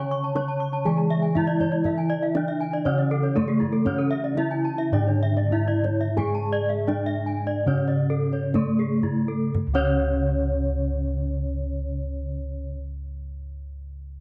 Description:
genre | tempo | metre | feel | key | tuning
Balinese gamelan | 56-120 BPM | 4/4 | straight | C# pelog | A4 = 440 Hz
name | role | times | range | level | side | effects
gamelan-type bronze metallophone | melody | 0.0-12.8 s | A3 to C#5 | -30 LUFS | equal | none
gamelan-type bronze metallophone | accompaniment | 0.0-12.7 s | C#3 to C#4 | -36 LUFS | equal | none
gamelan-type bronze metallophone | arpeggios | 0.0-12.8 s | E4 to C#6 | -34 LUFS | equal | none
gamelan-type bossed gongs | bass | 0.0-12.7 s | C#2 to C#5 | -28 LUFS | equal | none
gamelan-type bronze metallophone | arpeggios | 0.1-12.8 s | G#4 to C#6 | -34 LUFS | equal | none
kendang | percussion | 0.2-10.0 s | none | -35 LUFS | equal | none
room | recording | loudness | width
light reverb, studio ambience | none | -24 LUFS | mono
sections
0.0-9.6 A section; 9.6-13.8 B section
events
slowing down 3.9-9.6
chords
none

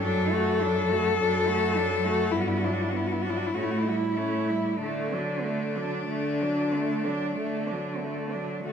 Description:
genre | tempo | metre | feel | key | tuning
classical, lyrical piece for cello ensemble | 46-53 BPM | 4/4 | rubato | D major | A4 = 439 Hz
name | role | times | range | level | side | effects
clear cello | melody | 0.0-8.7 s | D4 to A4 | -28 LUFS | left 5 dB | none
rich cello | second line | 0.0-8.7 s | A3 to F#4 | -32 LUFS | right 8 dB | none
rich cello | accompaniment | 0.0-8.7 s | F#3 to A3 | -32 LUFS | left 1 dB | none
rich cello | bass | 0.1-8.7 s | F#2 to D3 | -30 LUFS | right 2 dB | none
room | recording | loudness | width
wet recital hall reverb, RT60 1.8 s | minimal, uncompressed stereo recording | -24 LUFS | side -7 dB against mid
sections
0.0-8.7 A section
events
none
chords
0.0 D/F#; 2.3 Gmaj7; 3.5 A7; 4.8 D

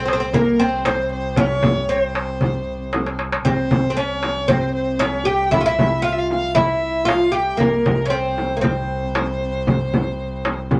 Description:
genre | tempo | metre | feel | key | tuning
Arabic maqam ensemble | 116 BPM | 4/4 | straight | C maqam hijaz | A4 = 441 Hz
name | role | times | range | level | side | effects
oud | melody | 0.0-10.8 s | Bb3 to G4 | -23 LUFS | equal | none
rich violin | second line | 0.0-10.8 s | Bb4 to G5 | -27 LUFS | equal | none
rich double bass | drone | 0.0-10.8 s | C2 | -31 LUFS | equal | none
darbuka | percussion | 0.1-10.8 s | none | -25 LUFS | equal | none
frame drum | percussion | 0.3-10.8 s | none | -26 LUFS | equal | none
room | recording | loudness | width
wet small room reverb, RT60 0.5 s | none | -20 LUFS | mono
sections
0.0-10.8 A section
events
drum fill 2.9-3.5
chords
none

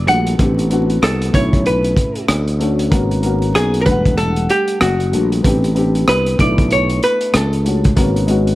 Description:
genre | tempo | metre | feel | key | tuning
hip hop, jazz-hop | 95 BPM | 4/4 | swing 60% on 16ths | unclear | A4 = 441 Hz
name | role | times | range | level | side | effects
archtop guitar, miked and amplified | melody | 0.0-7.8 s | F#4 to F#5 | -17 LUFS | equal | none
sustaining fretless electric bass | bass | 0.0-8.6 s | E1 to D2 | -17 LUFS | equal | none
dark upright piano | accompaniment | 0.1-8.6 s | G3 to F#5 | -20 LUFS | left 2 dB | none
crunchy breakbeat drum kit | drums | 0.1-8.6 s | hi-hat, kick drum, rim click | -18 LUFS | equal | none
room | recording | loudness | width
studio ambience | vinyl crackle | -13 LUFS | side -17 dB against mid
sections
0.0-8.6 A section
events
none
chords
0.4 Am11; 1.3 Bm11; 2.9 G#m11; 3.9 Em11; 5.4 Am11; 6.4 Bm11; 8.0 G#m11

